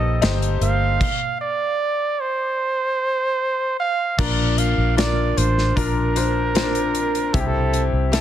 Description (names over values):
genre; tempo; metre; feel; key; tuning
pop ballad; 76 BPM; 4/4; straight; Bb major; A4 = 440 Hz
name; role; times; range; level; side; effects
warm flugelhorn; melody; 0.0-8.2 s; G4 to F5; -22 LUFS; right 3 dB; none
clear grand piano; accompaniment; 0.0-8.2 s; Bb2 to C5; -24 LUFS; left 6 dB; none
fingerpicked plugged-in steel-string acoustic guitar; arpeggios; 0.0-8.2 s; Bb2 to Bb4; -30 LUFS; right 7 dB; none
vintage muted fingered electric bass; bass; 0.0-8.2 s; G1 to C2; -22 LUFS; equal; none
modern studio drum kit; drums; 0.2-8.2 s; crash cymbal, hi-hat, kick drum, snare drum; -24 LUFS; equal; none
room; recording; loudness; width
light reverb, small room ambience; dense, heavily limited modern master; -18 LUFS; side -11 dB against mid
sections
0.0-4.2 A section; 4.2-8.2 B section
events
stop 1.0-4.2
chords
0.0 Eb/G; 1.0 N.C.; 4.2 Bb; 7.3 C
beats
0.22 | 1.01 1.80 2.59 3.39 | 4.18 4.98 5.76 6.55 | 7.34 8.12